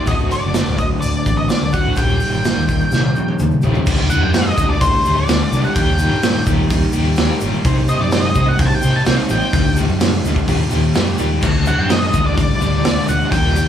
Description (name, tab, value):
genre	psychedelic rock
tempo	127 BPM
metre	4/4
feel	straight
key	D phrygian dominant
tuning	A4 = 440 Hz
part	octave-fuzz lead guitar	melody	0.0-13.7 s	C5 to A5	-21 LUFS	equal	distortion, slapback echo
part	string machine, cellos	sustained chords	0.0-13.7 s	D3 to G4	-28 LUFS	right 2 dB	none
part	overdriven semi-hollow guitar	riff	0.0-13.7 s	D2 to C5	-20 LUFS	equal	tremolo
part	fingered electric bass	bass	0.1-13.6 s	D1 to G2	-19 LUFS	left 1 dB	none
part	raw garage drum kit	drums	0.1-13.4 s	crash cymbal, hi-hat, kick drum, snare drum, toms	-18 LUFS	equal	none
part	tube shaker	percussion	0.1-13.7 s	none	-37 LUFS	left 6 dB	none
room	small room ambience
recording	none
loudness	-14 LUFS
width	side -9 dB against mid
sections	0.0-3.9 A section; 3.9-13.7 B section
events	drum fill 2.9-3.9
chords	0.1 D; 2.0 Eb; 3.9 Dsus4; 5.8 Eb; 7.6 Cm7; 9.5 Dsus4; 10.5 Eb; 11.4 Dsus4